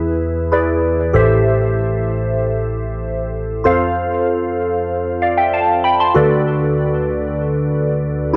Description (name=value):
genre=pop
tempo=96 BPM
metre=4/4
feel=straight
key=unclear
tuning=A4 = 440 Hz
part: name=glassy digital keys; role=solo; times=0.0-8.4 s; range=A1 to C6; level=-17 LUFS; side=equal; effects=chorus, tape echo
room=moderate studio reverb, RT60 0.6 s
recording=none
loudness=-17 LUFS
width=mono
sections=0.0-8.4 A section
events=none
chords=0.0 E; 1.2 Am7; 3.7 F; 6.2 D6